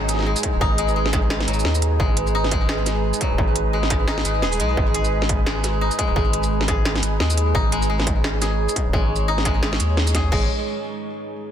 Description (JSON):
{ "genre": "half-time drum and bass", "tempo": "173 BPM", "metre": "4/4", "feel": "swing 58% on 16ths, half-time", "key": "G# minor", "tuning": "A4 = 443 Hz", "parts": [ { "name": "deep dark ambient pad", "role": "sustained chords", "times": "0.0-10.5 s", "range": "G#3 to D#5", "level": "-26 LUFS", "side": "equal", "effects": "chorus, built-in reverb, sidechain pumping" }, { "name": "koto", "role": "arpeggios", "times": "0.0-10.5 s", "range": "D#3 to G#4", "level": "-27 LUFS", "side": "left 2 dB", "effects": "digital delay" }, { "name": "saturated sub bass", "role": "bass", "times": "0.0-10.5 s", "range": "D#1 to D#2", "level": "-22 LUFS", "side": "equal", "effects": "tube saturation" }, { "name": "pulsing gated texture", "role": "texture", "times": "0.1-10.3 s", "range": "B4", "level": "-34 LUFS", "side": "right 10 dB", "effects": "chorus, built-in reverb" }, { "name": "industrial drum kit", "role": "drums", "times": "0.1-10.4 s", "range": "crash cymbal, hi-hat, shaker, snare drum", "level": "-25 LUFS", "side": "right 1 dB", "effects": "none" }, { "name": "electronic kick drum", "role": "drums", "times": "0.4-10.4 s", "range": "none", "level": "-23 LUFS", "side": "equal", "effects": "distortion" } ], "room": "light reverb", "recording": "dense, heavily limited modern master", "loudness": "-18 LUFS", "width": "side -9 dB against mid", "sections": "0.0-10.3 A section; 10.3-11.5 B section", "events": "drop 0.0-10.3; band accent 10.0", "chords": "0.0 G#m" }